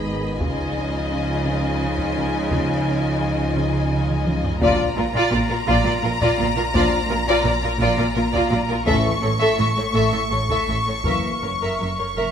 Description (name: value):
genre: cinematic, suspense film score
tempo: 85 BPM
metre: 3/4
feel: straight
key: unclear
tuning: A4 = 440 Hz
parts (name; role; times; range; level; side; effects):
- rich studio violin section; melody; 0.0-12.3 s; Ab5 to C#6; -26 LUFS; left 3 dB; none
- warm studio violin section; second line; 0.0-12.3 s; Bb4 to E5; -26 LUFS; left 2 dB; none
- warm studio viola section; accompaniment; 0.0-12.3 s; F4 to Bb4; -26 LUFS; right 1 dB; none
- mellow French horn section; sustained chords; 0.0-11.3 s; Eb3 to Eb4; -28 LUFS; left 3 dB; none
- rich studio cello section; riff; 0.0-12.3 s; Gb2 to Db4; -28 LUFS; right 1 dB; none
- clear studio cello section; bass; 0.0-12.2 s; Gb2 to Db3; -27 LUFS; right 2 dB; none
- rich studio double bass section; bass; 0.0-12.2 s; Gb1 to Db2; -28 LUFS; right 2 dB; none
- deep rumbling drone; drone; 0.0-12.3 s; Gb1 to Db2; -31 LUFS; right 1 dB; built-in reverb
- solo taiko drums; drums; 0.4-11.8 s; none; -28 LUFS; equal; none
room: wet scoring stage reverb, RT60 2.1 s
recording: none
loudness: -18 LUFS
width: side -8 dB against mid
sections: 0.0-12.3 A section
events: drum fill 4.1-4.6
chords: 0.4 Dbadd9; 4.6 Bb; 8.9 A; 11.1 Gb7